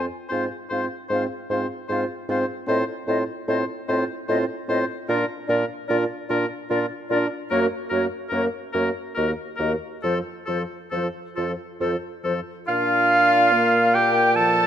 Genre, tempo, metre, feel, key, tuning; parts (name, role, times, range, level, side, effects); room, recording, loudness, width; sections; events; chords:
classical, slow romantic movement for wind quintet; 67-77 BPM; 3/4; rubato; Bb major; A4 = 441 Hz
clear oboe; second line; 0.0-14.7 s; F4 to C5; -27 LUFS; left 4 dB
clear French horn; accompaniment; 0.0-14.7 s; F3 to D4; -29 LUFS; equal
clear clarinet; accompaniment; 0.0-14.7 s; F4 to A5; -26 LUFS; right 5 dB
mellow bassoon; bass; 0.0-14.7 s; Eb2 to Bb2; -27 LUFS; right 2 dB
concert flute; melody; 0.3-14.7 s; C5 to A5; -29 LUFS; left 7 dB
moderate scoring stage reverb, RT60 2.0 s; -21 LUFS; side -10 dB against mid
0.0-12.7 A section; 12.7-14.7 B section
0.3 Fm/Ab; 2.7 F7/A; 5.1 Bb; 7.5 Gb; 9.2 Ebm; 10.0 F; 12.7 Bb